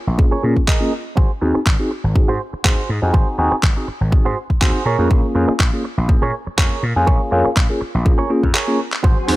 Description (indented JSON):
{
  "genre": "filtered disco house",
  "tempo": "122 BPM",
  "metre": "4/4",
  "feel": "swing 54% on 16ths",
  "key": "unclear",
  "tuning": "A4 = 440 Hz",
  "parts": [
    { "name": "gritty slap bass", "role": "bass", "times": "0.1-9.4 s", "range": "Ab1 to Bb2", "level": "-21 LUFS", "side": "equal", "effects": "overdrive, sidechain pumping, low-pass filter" },
    { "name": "bell-like tine electric piano", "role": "accompaniment", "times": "0.2-9.4 s", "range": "Bb3 to Ab4", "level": "-20 LUFS", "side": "left 1 dB", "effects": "phaser, sidechain pumping, low-pass filter" },
    { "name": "electronic kick drum", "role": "drums", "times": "0.2-9.1 s", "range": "none", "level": "-15 LUFS", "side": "equal", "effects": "none" },
    { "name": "direct-recorded clean electric guitar", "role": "riff", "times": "0.3-9.3 s", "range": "Gb4 to Eb5", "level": "-24 LUFS", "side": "right 5 dB", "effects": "vintage 12-bit sampler grit, sidechain pumping, low-pass filter" },
    { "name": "dusty soul sampler-style drum kit", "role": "drums", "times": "0.7-9.4 s", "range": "handclaps, hi-hat", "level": "-22 LUFS", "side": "equal", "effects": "sidechain pumping on hats" },
    { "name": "string machine, full ensemble", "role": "sustained chords", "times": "9.0-9.4 s", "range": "Gb4 to Ab5", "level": "-22 LUFS", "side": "equal", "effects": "ensemble chorus, sidechain pumping, low-pass filter" }
  ],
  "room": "light reverb",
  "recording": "none",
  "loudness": "-15 LUFS",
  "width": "side -18 dB against mid",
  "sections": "0.0-9.4 A section",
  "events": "filter sweep 0.0-9.4; break 8.5-9.0; drum fill 8.5-9.0",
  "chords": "0.0 Bbm7; 1.2 Ab7; 4.9 Bbm7"
}